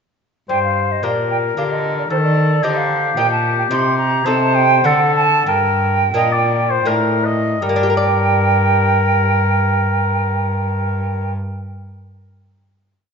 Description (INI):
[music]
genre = classical, baroque-style sonata movement with continuo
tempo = 77-113 BPM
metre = 3/4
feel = rubato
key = G minor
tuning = A4 = 440 Hz
[part]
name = warm oboe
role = melody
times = 0.5-11.3 s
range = G4 to Eb5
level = -19 LUFS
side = left 6 dB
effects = none
[part]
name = hollow concert flute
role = second line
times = 0.5-11.3 s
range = C5 to C6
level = -19 LUFS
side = right 7 dB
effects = none
[part]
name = lute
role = accompaniment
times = 0.5-11.7 s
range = G2 to D5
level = -24 LUFS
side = left 4 dB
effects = none
[part]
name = rich cello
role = bass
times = 0.5-11.3 s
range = G2 to Eb3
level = -20 LUFS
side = right 1 dB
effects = none
[sound]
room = moderate recital hall reverb, RT60 1.8 s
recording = nothing above 7.6 kHz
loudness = -14 LUFS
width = side -6 dB against mid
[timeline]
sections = 0.5-7.6 A section; 7.6-12.2 final chord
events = slowing down 2.9-7.6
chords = 0.5 Gm; 2.1 Cm; 4.3 Adim/C; 4.8 D7; 5.5 Gm